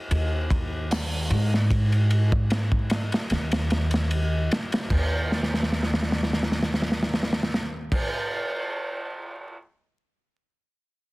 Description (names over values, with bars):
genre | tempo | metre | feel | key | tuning
trip hop | 75 BPM | 4/4 | swing 54% on 16ths | unclear | A4 = 443 Hz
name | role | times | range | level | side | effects
upright bass | bass | 0.1-8.0 s | Eb2 to Ab2 | -25 LUFS | equal | none
crunchy breakbeat drum kit | drums | 0.1-9.6 s | crash cymbal, hi-hat, kick drum, ride cymbal, snare drum | -25 LUFS | equal | none
tambourine | percussion | 0.9-1.1 s | none | -43 LUFS | left 5 dB | none
room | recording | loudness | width
small room reverb | dense, heavily limited modern master, vinyl crackle | -22 LUFS | side -21 dB against mid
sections
0.0-4.9 A section; 4.9-8.1 B section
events
drum fill 5.3-7.9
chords
none